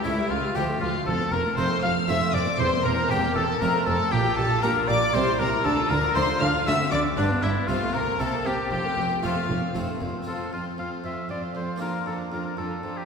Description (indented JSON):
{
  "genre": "classical, baroque-style concerto movement with solo episodes",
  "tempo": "118 BPM",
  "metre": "3/4",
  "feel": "straight",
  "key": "F major from 4.1 s",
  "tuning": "A4 = 440 Hz",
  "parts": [
    { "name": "warm chamber violin section", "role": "melody", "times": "0.0-13.1 s", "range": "D5 to F6", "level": "-31 LUFS", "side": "left 4 dB", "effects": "none" },
    { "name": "warm oboe", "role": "melody", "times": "0.0-13.1 s", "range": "D4 to F5", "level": "-28 LUFS", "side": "left 1 dB", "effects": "none" },
    { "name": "rich chamber violin section", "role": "second line", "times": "0.0-13.1 s", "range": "D4 to F5", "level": "-30 LUFS", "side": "left 2 dB", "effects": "none" },
    { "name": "dark chamber viola section", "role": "accompaniment", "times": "0.0-13.1 s", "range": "F3 to G4", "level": "-32 LUFS", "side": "left 1 dB", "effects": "none" },
    { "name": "harpsichord", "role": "accompaniment", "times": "0.0-13.1 s", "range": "C#2 to G4", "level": "-32 LUFS", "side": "equal", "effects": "none" },
    { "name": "rich chamber double bass section", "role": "bass", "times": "0.0-10.1 s", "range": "E1 to D2", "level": "-31 LUFS", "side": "right 3 dB", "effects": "none" },
    { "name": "warm chamber cello section", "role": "bass", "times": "0.0-12.9 s", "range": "C#2 to D3", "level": "-30 LUFS", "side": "right 3 dB", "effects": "none" }
  ],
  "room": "wet concert hall reverb, RT60 2.2 s",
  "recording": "heard from further back in the room",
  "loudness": "-22 LUFS",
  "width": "side -6 dB against mid",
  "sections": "0.0-10.3 A section; 10.3-13.1 B section",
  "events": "none",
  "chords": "0.0 A7/C#; 0.6 Dm; 1.1 F; 2.6 C7/E; 3.6 F; 4.1 Gm7/Bb; 5.1 C7; 5.6 Dm; 6.7 D7; 7.2 G7; 7.7 F/C; 8.2 C7; 8.7 F; 10.3 F5; 11.8 Bb/F"
}